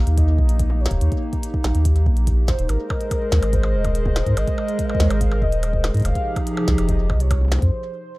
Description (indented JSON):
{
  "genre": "IDM",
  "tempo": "143 BPM",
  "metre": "4/4",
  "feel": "straight",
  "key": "unclear",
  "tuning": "A4 = 440 Hz",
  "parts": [
    { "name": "warm velvety synth lead", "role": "melody", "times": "0.0-8.2 s", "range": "Bb4 to F5", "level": "-30 LUFS", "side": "left 1 dB", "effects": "chorus, digital delay, plate reverb" },
    { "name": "hollow soft pad", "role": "sustained chords", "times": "0.0-7.7 s", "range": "C3 to Eb5", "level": "-26 LUFS", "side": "equal", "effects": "chorus, sidechain pumping" },
    { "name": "warm sub bass", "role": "bass", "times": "0.0-7.7 s", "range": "Eb1 to Ab2", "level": "-18 LUFS", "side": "equal", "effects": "none" },
    { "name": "glitchy drum kit", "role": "drums", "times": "0.1-7.7 s", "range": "hi-hat, percussion blips, snare drum, toms", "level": "-29 LUFS", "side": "equal", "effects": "small room ambience" },
    { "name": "electronic kick drum", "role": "drums", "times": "0.2-7.7 s", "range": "none", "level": "-24 LUFS", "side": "equal", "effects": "small room ambience" }
  ],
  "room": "light reverb",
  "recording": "rough home demo mix",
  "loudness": "-17 LUFS",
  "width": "side -20 dB against mid",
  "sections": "0.0-8.2 A section",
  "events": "break 7.7-8.2",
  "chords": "0.0 Eb; 2.7 Abadd9; 6.0 Fm7"
}